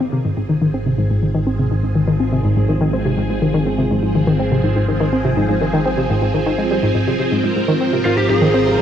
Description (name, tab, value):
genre	ambient, sequencer-driven space music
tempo	123 BPM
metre	4/4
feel	straight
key	Ab major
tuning	A4 = 440 Hz
part	phased string machine	sustained chords	0.0-8.8 s	F3 to Bb4	-22 LUFS	equal	ensemble chorus, phaser, cassette tape
part	analog pluck	riff	0.0-8.8 s	Ab2 to C4	-17 LUFS	left 1 dB	chorus, cassette tape, analog delay
part	analog drone	bass	0.4-8.8 s	Ab1	-23 LUFS	right 1 dB	chorus
part	pulsing gated texture	texture	0.0-8.8 s	C5	-28 LUFS	right 6 dB	chorus, built-in reverb, cassette tape
part	lead guitar through a small cranked amp	melody	8.1-8.8 s	F4 to Ab4	-17 LUFS	equal	overdrive
room	moderate lush hall reverb, RT60 2.4 s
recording	home recording on cassette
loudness	-15 LUFS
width	side -9 dB against mid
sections	0.0-8.8 A section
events	fade-in on string machine 0.0-8.8; fade-in on synth texture 0.0-8.8; filter sweep on synth arpeggio sound 0.0-8.8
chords	0.0 Ab6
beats	0.00 0.49 0.98 | 1.47 1.95 2.44 2.93 | 3.42 3.91 4.39 4.88 | 5.37 5.86 6.34 6.83 | 7.32 7.81 8.30 8.78